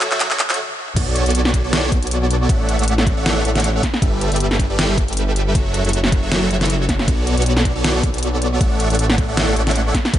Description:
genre	future bass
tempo	157 BPM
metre	4/4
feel	swing 55% on 16ths, half-time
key	D major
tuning	A4 = 438 Hz
part	supersaw chords	riff	0.0-10.2 s	F#3 to F#5	-21 LUFS	right 1 dB	sidechain pumping, tape echo
part	wide detuned saw bass	bass	0.0-10.2 s	F#1 to B1	-20 LUFS	equal	chorus, sidechain pumping
part	pop drum kit	drums	0.0-10.2 s	crash cymbal, handclaps, hi-hat, snare drum, toms	-21 LUFS	equal	overdrive
part	electronic kick drum	drums	1.0-10.2 s	none	-19 LUFS	equal	overdrive
room	little or no reverb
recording	high-pass filter, nothing above 10.5 kHz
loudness	-15 LUFS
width	side -12 dB against mid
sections	1.0-10.2 A section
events	drum fill 0.0-0.6, 0.6-1.0; stop 0.6-1.0; drop 1.0-10.2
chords	0.0 F#m7; 1.0 Bm9; 2.5 Dmaj9/A; 3.8 G69; 5.6 F#m7; 7.1 Bm9; 8.6 Dmaj9/A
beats	0.20 0.58 | 0.96 1.35 1.73 2.11 | 2.49 2.88 3.26 3.64 | 4.02 4.40 4.79 5.17 | 5.55 5.93 6.32 6.70 | 7.08 7.46 7.84 8.23 | 8.61 8.99 9.37 9.75 | 10.14

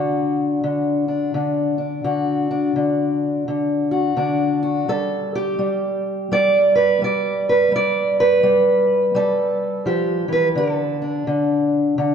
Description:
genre	acoustic country blues, solo or duo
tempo	84 BPM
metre	4/4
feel	swing 63% on 8ths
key	D major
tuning	A4 = 438 Hz
part	fingerpicked steel-string acoustic guitar	solo	0.0-12.1 s	D3 to D5	-17 LUFS	equal	none
room	moderate concert hall reverb, RT60 2.1 s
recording	dark, warm production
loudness	-17 LUFS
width	side -7 dB against mid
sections	0.0-12.1 A section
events	none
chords	0.0 D; 4.9 G; 10.6 D5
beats	0.63 1.34 | 2.05 2.76 3.47 4.18 | 4.89 5.60 6.31 7.02 | 7.73 8.44 9.15 9.86 | 10.56 11.27 11.98

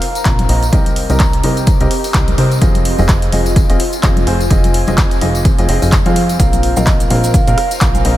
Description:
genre	piano house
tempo	127 BPM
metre	4/4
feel	swing 57% on 16ths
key	F minor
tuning	A4 = 441 Hz
part	vibraphone with soft mallets	melody	0.0-1.8, 6.8-8.1 s	Eb5 to Bb5	-24 LUFS	right 2 dB	vintage 12-bit sampler grit, tape echo
part	punchy analog drum machine	drums	0.0-8.2 s	handclaps, hi-hat, rim click, shaker	-21 LUFS	equal	none
part	warbly tape-like pad	texture	0.0-8.2 s	C4 to Ab5	-23 LUFS	left 1 dB	chorus, built-in reverb, phaser, sidechain pumping
part	tambourine and congas	percussion	0.2-8.0 s	none	-25 LUFS	left 4 dB	none
part	clear upright piano	riff	0.3-8.2 s	C4 to F5	-20 LUFS	equal	sidechain pumping, low-pass filter, tape echo
part	plucky analog bass	bass	0.3-8.2 s	F1 to F2	-16 LUFS	equal	sidechain pumping
part	electronic kick drum	drums	0.3-7.9 s	none	-14 LUFS	equal	none
room	light reverb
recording	none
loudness	-10 LUFS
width	side -14 dB against mid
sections	0.0-8.2 A section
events	none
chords	0.0 Bbsus2; 0.7 Cm7; 2.6 Fm7; 6.4 Bbsus2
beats	0.25 | 0.73 1.20 1.67 2.14 | 2.62 3.09 3.56 4.03 | 4.51 4.98 5.45 5.92 | 6.40 6.87 7.34 7.81

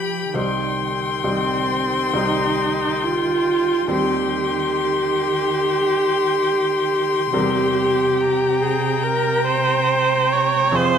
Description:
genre	classical, slow romantic movement for piano quintet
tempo	69 BPM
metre	4/4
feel	uneven beats, rubato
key	C minor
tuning	A4 = 439 Hz
part	clear violin	melody	0.0-11.0 s	Ab5 to C6	-24 LUFS	left 8 dB	none
part	warm cello	second line	0.0-11.0 s	C3 to F3	-28 LUFS	right 7 dB	none
part	warm violin	second line	0.0-11.0 s	F5 to G5	-28 LUFS	left 4 dB	none
part	bright baby grand piano	accompaniment	0.0-11.0 s	C2 to C5	-26 LUFS	right 1 dB	none
part	warm viola	accompaniment	0.0-11.0 s	C4 to Db5	-20 LUFS	right 2 dB	none
room	moderate recital hall reverb, RT60 1.5 s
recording	none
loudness	-17 LUFS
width	side -8 dB against mid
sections	0.0-11.0 A section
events	none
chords	0.4 Cm; 3.9 Cm/Eb; 7.3 C7/E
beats	| 0.36 1.27 2.16 3.03 | 3.91 4.78 5.64 6.50 | 7.35 8.20 9.03 9.88 | 10.75

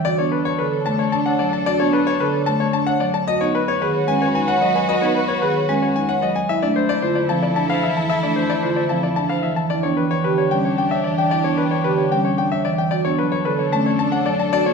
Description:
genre	classical, minimalist pattern music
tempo	112 BPM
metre	3/4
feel	straight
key	E dorian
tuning	A4 = 436 Hz
part	bright grand piano	melody	0.0-14.7 s	B4 to A5	-21 LUFS	left 6 dB	none
part	clear soprano saxophone	second line	0.1-14.7 s	D4 to F#4	-29 LUFS	right 2 dB	none
part	rich studio string section	sustained chords	0.1-14.7 s	D4 to B4	-28 LUFS	left 3 dB	none
part	vibraphone with soft mallets	arpeggios	0.1-14.7 s	C4 to C#5	-23 LUFS	right 4 dB	none
part	marimba with medium mallets	accompaniment	0.2-14.7 s	D3 to B3	-23 LUFS	right 1 dB	none
room	wet recital hall reverb, RT60 1.4 s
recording	recorded in a church or concert hall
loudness	-17 LUFS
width	side -5 dB against mid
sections	0.0-14.7 A section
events	none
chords	0.1 Bm7; 3.3 G#m7; 6.5 Fmaj7; 9.7 Em7; 12.9 Bm7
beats	| 0.06 0.60 1.14 | 1.67 2.21 2.74 | 3.28 3.81 4.35 | 4.89 5.42 5.96 | 6.49 7.03 7.56 | 8.10 8.64 9.17 | 9.71 10.24 10.78 | 11.31 11.85 12.39 | 12.92 13.46 13.99 | 14.53

